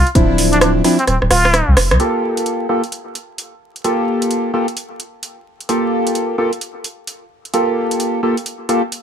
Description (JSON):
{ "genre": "UK garage, two-step garage", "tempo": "130 BPM", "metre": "4/4", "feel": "swing 63% on 16ths", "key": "G minor", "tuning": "A4 = 443 Hz", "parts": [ { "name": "trumpet with plunger mute", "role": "melody", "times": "0.0-1.8 s", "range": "C4 to F4", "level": "-19 LUFS", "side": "equal", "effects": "dub echo" }, { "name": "soft dub sub bass", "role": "bass", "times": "0.0-2.0 s", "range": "D1 to C2", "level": "-15 LUFS", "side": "equal", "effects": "none" }, { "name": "garage drum kit", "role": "drums", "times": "0.1-9.0 s", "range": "hi-hat, rim click", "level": "-19 LUFS", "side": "right 2 dB", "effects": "overdrive, small room ambience" }, { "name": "percussive organ stab", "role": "stabs", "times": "0.2-8.8 s", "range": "F3 to A4", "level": "-16 LUFS", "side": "equal", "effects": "wide subtle chorus, dub echo" } ], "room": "light reverb", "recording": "vinyl crackle", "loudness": "-14 LUFS", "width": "side -8 dB against mid", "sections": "0.0-2.0 A section; 2.0-9.0 B section", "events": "drum fill 1.1-2.0; band accent 1.9", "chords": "0.0 Dm9; 2.0 Gm9" }